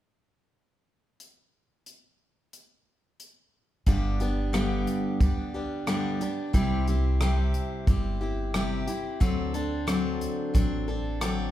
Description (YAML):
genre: honky-tonk and classic country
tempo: 90 BPM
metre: 4/4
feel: straight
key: G major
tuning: A4 = 440 Hz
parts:
  - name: natural country drum kit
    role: drums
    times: 1.2-11.4 s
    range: hi-hat, kick drum, rim click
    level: -27 LUFS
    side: equal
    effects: none
  - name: picked steel-string acoustic guitar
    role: accompaniment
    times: 3.9-11.5 s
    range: G2 to A4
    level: -28 LUFS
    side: left 1 dB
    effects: none
  - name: upright bass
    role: bass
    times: 3.9-11.5 s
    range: G1 to D2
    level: -29 LUFS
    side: equal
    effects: none
room: moderate recital hall reverb, RT60 1.4 s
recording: recorded in a church or concert hall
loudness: -25 LUFS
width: side -13 dB against mid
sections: 1.2-3.9 A section; 3.9-11.5 B section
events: none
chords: 1.2 N.C.; 3.9 G; 6.5 C; 9.2 D7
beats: | 1.20 1.86 2.53 3.20 | 3.87 4.54 5.21 5.87 | 6.54 7.21 7.88 8.54 | 9.21 9.88 10.55 11.21